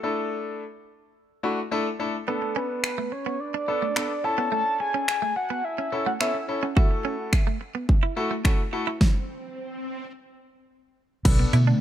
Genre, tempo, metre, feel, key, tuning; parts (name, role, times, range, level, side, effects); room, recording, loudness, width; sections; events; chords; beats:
dance-pop; 107 BPM; 4/4; straight; A4 = 439 Hz
bright concert grand piano; accompaniment; 0.0-11.5 s; A3 to A4; -28 LUFS; left 2 dB; sidechain pumping
soft octave-layered synth lead; melody; 2.3-6.6 s; A4 to A5; -27 LUFS; equal; chorus, digital delay
direct-recorded clean electric guitar; riff; 2.3-11.8 s; A3 to F#4; -31 LUFS; right 7 dB; analog chorus
pop drum kit; drums; 2.8-11.7 s; crash cymbal, finger snaps, hi-hat, kick drum, snare drum; -21 LUFS; equal; overdrive
swell; sound effects; 9.1-10.1 s; -38 LUFS; equal
airy breathy pad; sustained chords; 11.3-11.8 s; D3 to B3; -26 LUFS; left 1 dB; chorus, phaser, sidechain pumping
mallet-like synth pluck; arpeggios; 11.3-11.5 s; F#3 to B3; -33 LUFS; left 6 dB
vintage muted fingered electric bass; bass; 11.3-11.7 s; B1 to B2; -20 LUFS; right 1 dB; sidechain pumping
light reverb; -23 LUFS; side -11 dB against mid
0.0-11.3 A section
stop 9.0-11.3; swell 9.1-11.3
0.0 Dsus2/A; 2.3 Bm7; 4.2 A; 6.8 F#m7/A; 9.0 N.C.; 11.3 Bm7
| 0.04 0.60 1.16 1.72 | 2.28 2.84 3.40 3.96 | 4.52 5.08 5.64 6.21 | 6.77 7.33 7.89 8.45 | 9.01 9.57 10.13 10.69 | 11.25